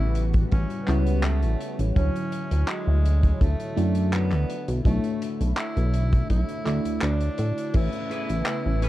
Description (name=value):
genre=vaporwave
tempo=83 BPM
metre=4/4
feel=straight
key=A major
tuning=A4 = 439 Hz
part: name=breathy tenor saxophone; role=melody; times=0.0-8.9 s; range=G#3 to E4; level=-34 LUFS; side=equal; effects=tape echo
part: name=FM electric piano with soft pad layer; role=accompaniment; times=0.0-8.9 s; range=D3 to G#5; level=-30 LUFS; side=equal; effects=phaser, lush chorus
part: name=lush unison pad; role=sustained chords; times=0.0-8.9 s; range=C#3 to G#5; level=-36 LUFS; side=equal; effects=chorus, phaser
part: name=chorused synth bass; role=bass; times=0.0-8.9 s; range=A1 to A2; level=-22 LUFS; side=equal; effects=none
part: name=modern studio drum kit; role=drums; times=0.1-8.9 s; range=crash cymbal, handclaps, hi-hat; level=-35 LUFS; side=equal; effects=none
part: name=kick drum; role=drums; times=0.3-7.9 s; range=none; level=-24 LUFS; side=equal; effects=none
part: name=clean electric guitar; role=riff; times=8.1-8.9 s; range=C#4 to B4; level=-36 LUFS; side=right 1 dB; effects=wide subtle chorus
room=small room ambience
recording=dark, warm production, cassette tape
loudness=-22 LUFS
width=side -15 dB against mid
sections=0.0-7.7 A section; 7.7-8.9 B section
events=none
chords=0.0 A13; 2.0 Dmaj9; 4.5 Bm11; 7.7 Amaj9